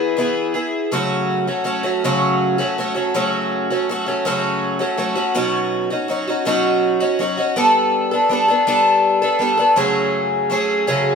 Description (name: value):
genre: rock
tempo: 54 BPM (dotted quarters)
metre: 6/8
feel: straight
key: unclear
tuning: A4 = 440 Hz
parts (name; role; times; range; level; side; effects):
- picked twelve-string acoustic guitar; solo; 0.0-11.2 s; F#2 to A4; -16 LUFS; equal; none
room: moderate large studio reverb, RT60 1.0 s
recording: band playing live in one room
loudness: -16 LUFS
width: side -6 dB against mid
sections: 0.9-9.8 A section; 9.8-11.2 B section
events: none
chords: 0.0 E; 0.9 F#m; 5.4 Badd9; 7.6 Gadd9; 9.8 F#madd9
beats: | 0.92 2.04 | 3.15 4.26 | 5.37 6.47 | 7.58 8.69 | 9.79 10.89